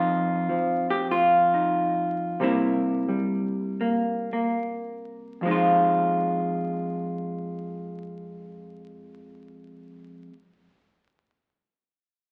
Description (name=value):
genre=solo jazz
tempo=69-99 BPM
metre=4/4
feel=swing 67% on 8ths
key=F minor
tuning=A4 = 440 Hz
part: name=hollow-body jazz guitar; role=solo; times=0.0-10.4 s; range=F2 to G4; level=-26 LUFS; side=equal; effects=none
room=wet large studio reverb, RT60 1.2 s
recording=very old 78 rpm record, vinyl crackle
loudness=-25 LUFS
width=mono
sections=0.0-5.4 A section; 5.4-8.9 B section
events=slowing down 0.0-5.4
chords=0.0 Ebsus2/F; 2.4 C7; 5.4 Fm7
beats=0.48 1.10 1.73 | 2.39 3.08 3.81 4.58 | 5.41 6.27 7.14 8.00